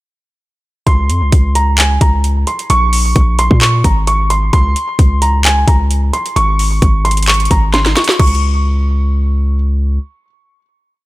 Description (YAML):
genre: hip hop, trap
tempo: 131 BPM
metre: 4/4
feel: half-time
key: unclear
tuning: A4 = 440 Hz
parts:
  - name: dark grand piano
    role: melody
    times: 0.9-9.5 s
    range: Ab5 to Db6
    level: -16 LUFS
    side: right 1 dB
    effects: low-pass filter, digital delay
  - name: long sustained 808-style bass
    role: bass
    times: 0.9-10.0 s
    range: Ab1 to Bb2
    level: -13 LUFS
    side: equal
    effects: none
  - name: trap drum kit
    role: drums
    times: 0.9-8.4 s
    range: crash cymbal, handclaps, hi-hat, kick drum, snare drum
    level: -13 LUFS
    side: equal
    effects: none
room: little or no reverb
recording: none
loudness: -10 LUFS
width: side -18 dB against mid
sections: 0.9-8.2 hook; 8.2-11.1 final note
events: drum fill 7.7-8.2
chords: 0.9 Dbmaj7(no3); 2.7 Bbm7; 4.5 Bbmadd9/Db; 6.4 Absus4; 8.2 N.C.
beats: | 0.87 1.32 1.78 2.24 | 2.70 3.16 3.62 4.07 | 4.53 4.99 5.45 5.91 | 6.36 6.82 7.28 7.74 | 8.20 8.65 9.11 9.57